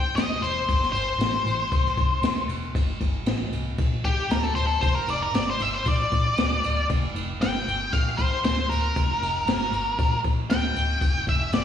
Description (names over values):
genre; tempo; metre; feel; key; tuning
blues rock power trio and southern rock; 116 BPM; 4/4; straight; unclear; A4 = 440 Hz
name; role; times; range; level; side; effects
octave-fuzz lead guitar; melody; 0.0-11.6 s; G4 to G5; -25 LUFS; left 2 dB; distortion, slapback echo
hollow-body short-scale picked electric bass; bass; 0.1-11.6 s; C1 to Bb1; -27 LUFS; left 1 dB; none
jazz brush drum kit; drums; 0.2-11.6 s; kick drum, ride cymbal, snare drum; -26 LUFS; equal; none
room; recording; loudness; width
small room ambience; live gig heard through the venue's PA, recital hall reverb; -22 LUFS; side -9 dB against mid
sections
0.0-11.6 A section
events
lead electric guitar solo 0.0-11.6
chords
0.0 C; 3.8 Bb